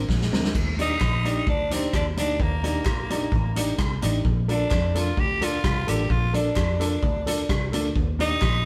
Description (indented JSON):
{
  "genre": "ska",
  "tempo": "130 BPM",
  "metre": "4/4",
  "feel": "straight",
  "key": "unclear",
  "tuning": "A4 = 442 Hz",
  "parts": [
    { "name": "raspy tenor saxophone", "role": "melody", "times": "0.0-8.7 s", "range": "Bb3 to G4", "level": "-30 LUFS", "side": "equal", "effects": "none" },
    { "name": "warm upright piano", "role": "stabs", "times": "0.0-8.4 s", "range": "C4 to D5", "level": "-34 LUFS", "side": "equal", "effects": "none" },
    { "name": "vintage muted fingered electric bass", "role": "bass", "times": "0.0-8.7 s", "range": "A1 to F2", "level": "-29 LUFS", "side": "equal", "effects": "none" },
    { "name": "swinging big-band drum kit", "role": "drums", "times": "0.1-8.5 s", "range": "crash cymbal, hi-hat, kick drum, rim click, snare drum", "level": "-28 LUFS", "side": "equal", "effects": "none" },
    { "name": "mellow electric guitar", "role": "accompaniment", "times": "0.3-8.3 s", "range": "F3 to Bb4", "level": "-34 LUFS", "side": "equal", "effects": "warbly pitch drift" },
    { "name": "group handclap", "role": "percussion", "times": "1.0-8.5 s", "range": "none", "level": "-45 LUFS", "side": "equal", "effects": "none" }
  ],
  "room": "wet stone room reverb, RT60 1.0 s",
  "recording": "band playing live in one room",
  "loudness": "-24 LUFS",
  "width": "mono",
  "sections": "0.6-8.7 A section",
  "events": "drum fill 0.1-0.6",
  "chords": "0.0 Bbadd9; 0.6 Ebmaj7; 4.2 Bbmaj7; 8.0 Ebmaj7",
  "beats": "0.09 | 0.55 1.01 1.47 1.94 | 2.40 2.86 3.32 3.79 | 4.25 4.71 5.18 5.64 | 6.10 6.57 7.03 7.49 | 7.95 8.42"
}